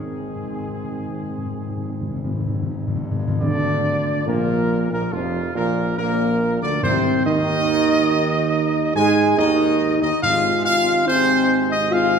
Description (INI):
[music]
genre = classical, ceremonial fanfare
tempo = 65-72 BPM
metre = 4/4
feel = straight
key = Ab major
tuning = A4 = 440 Hz
[part]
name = warm trumpet section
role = melody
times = 0.0-12.2 s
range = F4 to Ab5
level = -22 LUFS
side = right 1 dB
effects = none
[part]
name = mellow French horn section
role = sustained chords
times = 0.0-12.2 s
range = F3 to Ab4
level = -24 LUFS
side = left 3 dB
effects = none
[part]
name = warm trombone section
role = sustained chords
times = 0.0-12.2 s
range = F2 to C4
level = -27 LUFS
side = right 4 dB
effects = none
[part]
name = dark tuba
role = bass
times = 0.0-12.2 s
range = F1 to Ab2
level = -24 LUFS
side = right 4 dB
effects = none
[part]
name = timpani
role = percussion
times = 0.0-11.4 s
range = Ab2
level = -27 LUFS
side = left 2 dB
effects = none
[sound]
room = wet scoring stage reverb, RT60 2.1 s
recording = minimal, uncompressed stereo recording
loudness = -18 LUFS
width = side -6 dB against mid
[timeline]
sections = 0.0-3.4 A section; 3.4-12.2 B section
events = timpani fill 0.0-3.4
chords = 0.0 Ab; 3.4 Bb; 6.8 Ab/C; 10.2 Fm/Ab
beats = 0.72 1.61 2.50 | 3.41 4.27 5.13 5.98 | 6.83 7.68 8.53 9.38 | 10.23 11.07 11.91